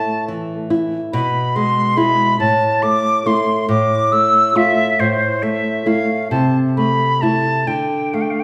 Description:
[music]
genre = romantic duo for flute and classical guitar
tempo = 43-48 BPM (dotted quarters)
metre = 6/8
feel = rubato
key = A minor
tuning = A4 = 440 Hz
[part]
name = bright silver concert flute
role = melody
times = 0.0-8.4 s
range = C5 to E6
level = -19 LUFS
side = equal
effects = none
[part]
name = nylon-string guitar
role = accompaniment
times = 0.0-8.4 s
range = A2 to F4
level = -20 LUFS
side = equal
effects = none
[sound]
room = wet large studio reverb, RT60 1.2 s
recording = band playing live in one room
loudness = -17 LUFS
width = mono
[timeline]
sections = 0.0-8.4 A section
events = none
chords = 0.0 A5; 1.1 E/B; 2.4 A5; 3.7 Dmadd9/A; 5.0 A5; 6.3 Am/C; 7.7 Dmadd11

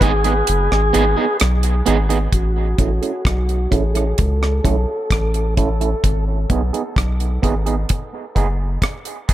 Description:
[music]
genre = dub reggae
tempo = 65 BPM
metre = 4/4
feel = straight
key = unclear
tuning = A4 = 439 Hz
[part]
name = tonewheel organ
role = melody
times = 0.0-5.5 s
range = F#4 to A4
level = -23 LUFS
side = left 1 dB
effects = overdrive, stopped rotary speaker, low-pass filter, dub echo
[part]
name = electric guitar at the edge of break-up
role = accompaniment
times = 0.0-9.3 s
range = B3 to A4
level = -23 LUFS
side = right 6 dB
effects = high-pass filter, low-pass filter, dub echo
[part]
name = soft dub sub bass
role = bass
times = 0.0-8.8 s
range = F#1 to C#2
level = -18 LUFS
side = equal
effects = none
[part]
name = deep reggae drum kit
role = drums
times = 0.0-9.3 s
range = hi-hat, kick drum, rim click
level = -20 LUFS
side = equal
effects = none
[sound]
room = studio ambience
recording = echo-heavy mix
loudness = -16 LUFS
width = side -13 dB against mid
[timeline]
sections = 0.0-2.3 A section; 2.3-9.3 B section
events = kick muted 0.5-2.3; filter sweep 2.3-9.3; filter sweep on clean electric guitar 6.0-9.3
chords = 0.0 G#m; 2.3 A; 6.0 G#m

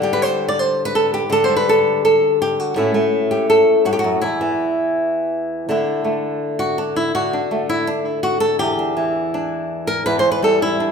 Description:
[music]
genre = flamenco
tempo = 164 BPM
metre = 4/4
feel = straight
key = unclear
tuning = A4 = 442 Hz
[part]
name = flamenco guitar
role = solo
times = 0.0-10.9 s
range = E2 to D5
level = -16 LUFS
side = equal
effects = none
[sound]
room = wet large studio reverb, RT60 1.3 s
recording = band playing live in one room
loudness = -16 LUFS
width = side -6 dB against mid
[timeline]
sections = 0.0-5.7 A section; 5.7-10.9 B section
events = nylon-string guitar solo 5.7-10.9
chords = 0.0 Dsus4; 2.8 A7; 4.2 N.C.; 5.7 Dadd9; 8.6 Em7

